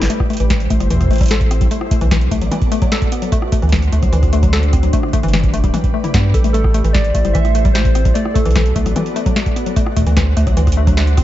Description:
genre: IDM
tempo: 149 BPM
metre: 4/4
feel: straight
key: A dorian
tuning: A4 = 440 Hz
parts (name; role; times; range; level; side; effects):
- glassy FM pad; sustained chords; 0.0-11.2 s; D3 to D5; -24 LUFS; equal; ensemble chorus, built-in reverb
- warbly dusty pluck; arpeggios; 0.0-11.2 s; E3 to A4; -21 LUFS; left 4 dB; chorus, cassette tape, analog delay
- warm sub bass; bass; 0.0-11.2 s; D1 to G2; -15 LUFS; equal; none
- electro analog drum machine; drums; 0.0-11.2 s; hi-hat, rim click, snare drum, toms; -23 LUFS; equal; analog delay
- electronic kick drum; drums; 0.2-11.2 s; none; -17 LUFS; equal; none
- warbly lo-fi synth keys; melody; 6.5-8.9 s; A4 to E5; -23 LUFS; right 2 dB; chorus, analog delay
room: digital ambience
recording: echo-heavy mix, nothing above 7.7 kHz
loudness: -12 LUFS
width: side -14 dB against mid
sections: 0.1-11.2 A section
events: none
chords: 0.1 Am7; 1.7 Bm7; 3.3 D7; 4.9 G; 6.5 Am7; 8.2 Bm7; 9.8 D7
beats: | 0.10 0.50 0.91 1.31 | 1.71 2.11 2.52 2.92 | 3.32 3.72 4.13 4.53 | 4.93 5.33 5.74 6.14 | 6.54 6.95 7.35 7.75 | 8.15 8.56 8.96 9.36 | 9.77 10.17 10.57 10.97

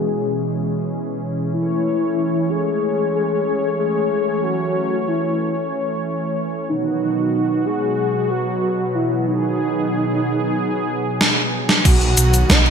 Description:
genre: synthwave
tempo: 93 BPM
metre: 4/4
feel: straight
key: unclear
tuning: A4 = 440 Hz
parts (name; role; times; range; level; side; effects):
- soft octave-layered synth lead; melody; 0.0-12.7 s; D#4 to D#5; -21 LUFS; left 1 dB; chorus, tremolo, ping-pong delay
- warm analog pad; sustained chords; 0.0-12.7 s; B2 to C#5; -22 LUFS; right 1 dB; chorus, sidechain pumping
- gated 80s digital drum machine; drums; 11.2-12.7 s; crash cymbal, hi-hat, shaker, snare drum; -16 LUFS; equal; gated reverb, gated reverb snare, overdrive
- dark detuned saw bass; bass; 11.9-12.7 s; B1; -16 LUFS; right 1 dB; tube saturation
- electronic kick drum; drums; 11.9-12.6 s; none; -15 LUFS; right 1 dB; overdrive
room: wet plate reverb, RT60 2.0 s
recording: bright 1980s-style digital production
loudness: -17 LUFS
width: side -6 dB against mid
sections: 0.0-11.9 A section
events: filter sweep on analog synth pad 0.0-11.9; drum fill 11.2-11.9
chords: 0.0 E/B; 1.5 A; 6.7 B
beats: 0.24 0.88 | 1.53 2.17 2.82 3.46 | 4.11 4.75 5.40 6.05 | 6.69 7.34 7.98 8.63 | 9.27 9.92 10.56 11.21 | 11.85 12.50

